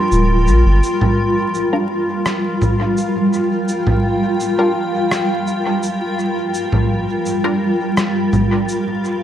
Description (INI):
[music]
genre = ambient dub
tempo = 84 BPM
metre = 4/4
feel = straight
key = G minor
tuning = A4 = 439 Hz
[part]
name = granular cloud pad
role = sustained chords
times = 0.0-9.2 s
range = G3 to G5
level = -17 LUFS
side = equal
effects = built-in reverb
[part]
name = vibraphone with soft mallets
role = arpeggios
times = 0.0-3.2 s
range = C6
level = -27 LUFS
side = equal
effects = dub echo
[part]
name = soft dub sub bass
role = bass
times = 0.1-0.8 s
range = D1 to Bb1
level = -13 LUFS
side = equal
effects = tube saturation
[part]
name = electronic shaker, congas and rim click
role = drums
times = 0.1-9.2 s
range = none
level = -20 LUFS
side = equal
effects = studio reverb, dub echo
[part]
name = bubbling stepped-filter texture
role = texture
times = 1.6-9.2 s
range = F4 to F5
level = -26 LUFS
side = equal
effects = chorus, built-in reverb
[part]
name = filtered dub chord stab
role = stabs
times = 1.7-7.6 s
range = G3 to Bb4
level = -23 LUFS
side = equal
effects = phaser, analog chorus, dub echo
[sound]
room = moderate echo chamber reverb, RT60 1.7 s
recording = dark, warm production, vinyl crackle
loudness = -15 LUFS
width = side -10 dB against mid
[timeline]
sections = 0.8-9.2 A section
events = none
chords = 0.0 Gm7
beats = 0.12 | 0.83 1.54 2.26 2.97 | 3.69 4.40 5.12 5.83 | 6.54 7.26 7.97 8.69